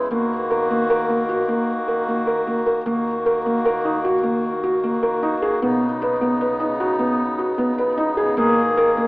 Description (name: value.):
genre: contemporary instrumental, chamber music in an uneven meter.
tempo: 152 BPM.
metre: 7/4.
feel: straight.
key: Eb minor.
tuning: A4 = 441 Hz.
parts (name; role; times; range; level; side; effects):
hand-pumped harmonium; sustained chords; 0.0-9.1 s; C#3 to Ab4; -22 LUFS; left 1 dB; none.
felt-muted upright piano; arpeggios; 0.0-9.1 s; Bb3 to B4; -20 LUFS; equal; none.
upright bass; bass; 0.0-9.1 s; Ab1 to Eb2; -44 LUFS; equal; none.
room: wet cathedral reverb, RT60 5.9 s.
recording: in a vast, echoing space, AM radio sound.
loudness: -18 LUFS.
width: side -24 dB against mid.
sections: 0.0-2.9 A section; 2.9-9.1 B section.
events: none.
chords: 0.1 Ebm; 5.6 Badd9; 8.4 Absus2.